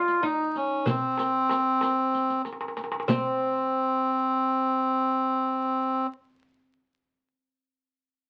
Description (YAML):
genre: Turkish makam ensemble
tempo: 189 BPM (eighths)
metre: 7/8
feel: straight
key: C makam kurdi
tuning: A4 = 440 Hz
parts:
  - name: melodica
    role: melody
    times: 0.0-6.1 s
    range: C4 to F4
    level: -26 LUFS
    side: equal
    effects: none
  - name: oud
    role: second line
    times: 0.0-6.8 s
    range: C4 to F4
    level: -35 LUFS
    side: equal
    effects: none
  - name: darbuka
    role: percussion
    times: 0.1-3.4 s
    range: none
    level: -34 LUFS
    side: equal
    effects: none
  - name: riq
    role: percussion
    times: 0.1-3.4 s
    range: none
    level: -33 LUFS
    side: equal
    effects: none
room: moderate studio ambience, RT60 0.5 s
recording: very old 78 rpm record, vinyl crackle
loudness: -26 LUFS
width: mono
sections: 0.0-3.1 A section; 3.1-5.3 B section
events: drum fill 2.5-3.1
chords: none